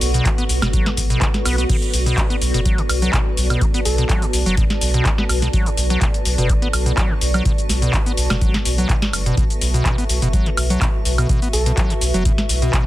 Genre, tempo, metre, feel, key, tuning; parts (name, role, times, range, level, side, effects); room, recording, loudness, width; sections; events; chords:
acid house; 125 BPM; 4/4; swing 53% on 16ths; B minor; A4 = 440 Hz
dark analog pad; sustained chords; 0.0-12.9 s; B3 to F#5; -30 LUFS; right 2 dB; chorus, sidechain pumping
warm sub bass; bass; 0.0-12.7 s; F#1 to B1; -20 LUFS; equal; sidechain pumping
booming analog drum machine; drums; 0.0-12.8 s; crash cymbal, handclaps, hi-hat, shaker, snare drum, woodblock; -23 LUFS; equal
granular cloud pad; texture; 0.0-12.9 s; F#4 to C#6; -28 LUFS; left 1 dB; built-in reverb, sidechain pumping
acid bass, square; riff; 0.1-12.8 s; B2 to B3; -23 LUFS; equal; overdrive, analog delay
electronic kick drum; drums; 0.3-12.8 s; -20 LUFS; equal
soft struck synth lead; melody; 3.9-4.3, 11.5-12.0 s; A4; -28 LUFS; right 1 dB; chorus, cassette tape, analog delay
light reverb; dense, heavily limited modern master; -16 LUFS; side -15 dB against mid
0.0-12.9 A section
0.0 Bm7